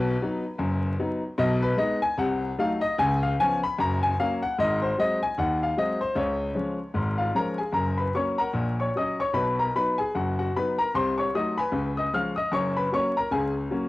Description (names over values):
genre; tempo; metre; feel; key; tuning
jazz, stride piano; 151 BPM; 4/4; swing 59% on 8ths; F# major; A4 = 442 Hz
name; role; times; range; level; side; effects
clear grand piano; solo; 0.0-13.9 s; F#1 to E#6; -23 LUFS; left 1 dB; cassette tape
room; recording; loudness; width
moderate spring reverb, RT60 2.2 s; home recording on cassette, vinyl crackle; -23 LUFS; side -18 dB against mid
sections
0.0-7.7 A section; 7.7-13.9 B section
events
none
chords
0.0 B; 1.4 G#m/B; 2.2 Cdim7; 3.0 C#7; 3.8 F#; 4.6 G#7; 6.2 C#; 7.7 F#; 8.5 F#/A#; 9.3 B; 10.9 Cdim7; 11.7 C#7; 12.5 F#